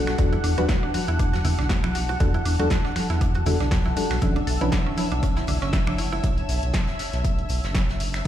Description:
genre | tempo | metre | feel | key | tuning
deep house | 119 BPM | 4/4 | swing 56% on 16ths | E dorian | A4 = 439 Hz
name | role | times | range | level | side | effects
mellow FM electric piano | stabs | 0.0-4.7 s | E3 to B4 | -28 LUFS | left 2 dB | chorus, sidechain pumping, digital delay
round analog bass | bass | 0.0-8.3 s | F#1 to E2 | -25 LUFS | equal | tube saturation, sidechain pumping
analog string pad | texture | 0.0-8.3 s | E5 to F#5 | -35 LUFS | right 1 dB | ensemble chorus, sidechain pumping
granular cloud pad | texture | 0.0-8.3 s | D4 to A5 | -33 LUFS | left 2 dB | built-in reverb, sidechain pumping
mallet-like synth pluck | arpeggios | 0.1-6.2 s | C#4 to A4 | -32 LUFS | right 2 dB | chorus, sidechain pumping, digital delay
jazz brush drum kit | drums | 0.1-8.2 s | hi-hat, snare drum | -39 LUFS | right 2 dB | high-pass filter on hats, high-pass filter on snare, high-pass filter on room
punchy analog drum machine | drums | 0.1-8.3 s | finger snaps, hi-hat, snare drum | -32 LUFS | left 1 dB | none
electronic kick drum | drums | 0.2-8.3 s | none | -24 LUFS | equal | none
congas and bongos | percussion | 0.2-6.2 s | none | -32 LUFS | right 3 dB | sidechain pumping on perc
room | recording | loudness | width
light reverb | played on a big sound system in a bare room, large studio reverb | -21 LUFS | side -11 dB against mid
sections
0.0-8.3 A section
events
none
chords
0.0 Em11; 4.2 Bm11

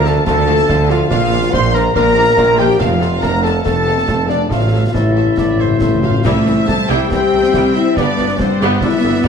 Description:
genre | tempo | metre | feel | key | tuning
cinematic, heroic adventure film score | 141 BPM | 4/4 | straight | unclear | A4 = 440 Hz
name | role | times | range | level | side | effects
rich studio violin section | melody | 0.0-9.3 s | C5 to C6 | -25 LUFS | left 2 dB | none
mellow clarinet | second line | 0.0-9.3 s | D4 to C5 | -26 LUFS | left 1 dB | none
mellow concert flute | second line | 0.0-9.3 s | C5 to C6 | -26 LUFS | left 1 dB | none
warm French horn section | sustained chords | 0.0-9.3 s | C4 to C5 | -17 LUFS | left 5 dB | none
concert harp | arpeggios | 0.0-9.3 s | F2 to B5 | -25 LUFS | left 6 dB | none
clear tuba | bass | 0.0-9.3 s | F1 to D2 | -21 LUFS | right 5 dB | none
rich symphonic cello section | bass | 0.0-9.3 s | F2 to C4 | -20 LUFS | right 2 dB | none
rich symphonic double bass section | bass | 0.0-9.3 s | F1 to D2 | -21 LUFS | right 4 dB | none
clear studio violin section | second line | 0.1-9.3 s | C5 to A5 | -30 LUFS | left 1 dB | none
rich symphonic viola section | accompaniment | 0.1-9.3 s | C3 to A4 | -24 LUFS | right 1 dB | none
clear trumpet section | stabs | 0.1-9.3 s | C4 to C6 | -23 LUFS | equal | none
concert snare drum, concert bass drum and clash cymbals | drums | 0.1-9.3 s | none | -23 LUFS | equal | none
timpani | percussion | 4.5-6.2 s | A2 | -21 LUFS | left 2 dB | none
warm oboe | second line | 4.9-9.3 s | A4 to E5 | -26 LUFS | right 1 dB | none
room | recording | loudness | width
wet recital hall reverb, RT60 1.6 s | dark, warm production | -11 LUFS | side -6 dB against mid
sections
0.0-6.3 A section; 6.3-9.3 B section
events
timpani fill 4.5-6.3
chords
0.0 Dm; 1.1 Bb; 2.8 F; 4.5 Am; 6.3 C; 8.0 G

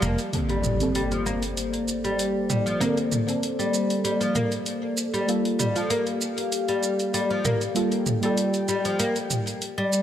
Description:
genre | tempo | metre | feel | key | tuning
organic downtempo | 97 BPM | 4/4 | straight | unclear | A4 = 439 Hz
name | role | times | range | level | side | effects
deep mellow chord stab | accompaniment | 0.0-10.0 s | D3 to A4 | -29 LUFS | right 2 dB | chorus, digital delay
airy breathy pad | sustained chords | 0.0-10.0 s | Bb3 to A5 | -29 LUFS | left 2 dB | chorus
oud | arpeggios | 0.0-10.0 s | F3 to Bb3 | -26 LUFS | equal | low-pass filter, digital delay
deep house drum kit | drums | 0.0-10.0 s | hi-hat, shaker, toms | -29 LUFS | right 1 dB | none
impact | sound effects | 0.3-2.8 s | none | -32 LUFS | equal | none
room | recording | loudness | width
moderate scoring stage reverb, RT60 2.0 s | none | -22 LUFS | side -10 dB against mid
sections
0.3-10.0 A section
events
impact 0.3-2.8; filter sweep on analog synth pad 0.3-10.0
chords
0.3 Bbmaj9; 5.3 Gm9

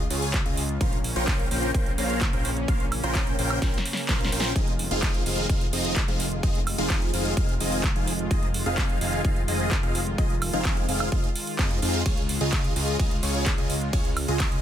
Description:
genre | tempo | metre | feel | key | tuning
EDM, festival progressive house | 128 BPM | 4/4 | straight | F minor | A4 = 440 Hz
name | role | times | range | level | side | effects
lush unison pad | sustained chords | 0.0-14.6 s | Db3 to F4 | -33 LUFS | equal | chorus, sidechain pumping
big supersaw lead | riff | 0.0-14.6 s | C4 to G5 | -29 LUFS | equal | phaser, sidechain pumping, ping-pong delay
fat analog bass | bass | 0.0-14.6 s | F1 to F2 | -30 LUFS | equal | sidechain pumping
big-room dance drum kit | drums | 0.1-14.6 s | handclaps, hi-hat, ride cymbal, snare drum, woodblock | -30 LUFS | right 2 dB | none
electronic kick drum | drums | 0.3-14.5 s | none | -25 LUFS | equal | none
room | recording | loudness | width
little or no reverb | none | -22 LUFS | side -10 dB against mid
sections
0.0-14.6 A section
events
drum fill 3.6-4.6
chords
0.0 Db; 0.8 Bbmadd9; 4.6 Fm7; 12.1 Db

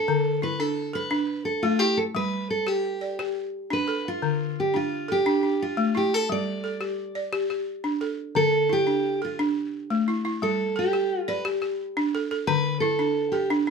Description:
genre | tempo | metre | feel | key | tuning
west african traditional, West African string and xylophone music | 116 BPM (dotted quarters) | 12/8 | straight | D dorian | A4 = 440 Hz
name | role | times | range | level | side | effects
fingerpicked steel-string acoustic guitar | melody | 0.0-13.5 s | F4 to D5 | -25 LUFS | right 2 dB | none
balafon | arpeggios | 0.0-13.7 s | D3 to D5 | -26 LUFS | left 1 dB | none
room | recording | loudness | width
moderate small room reverb, RT60 0.5 s | none | -23 LUFS | side -5 dB against mid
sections
0.0-8.4 A section; 8.4-13.7 B section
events
steel-string acoustic guitar solo 8.4-13.7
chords
0.1 D5; 2.2 G; 4.2 Dm; 6.3 G5; 8.4 D5; 10.4 G5; 12.5 D5

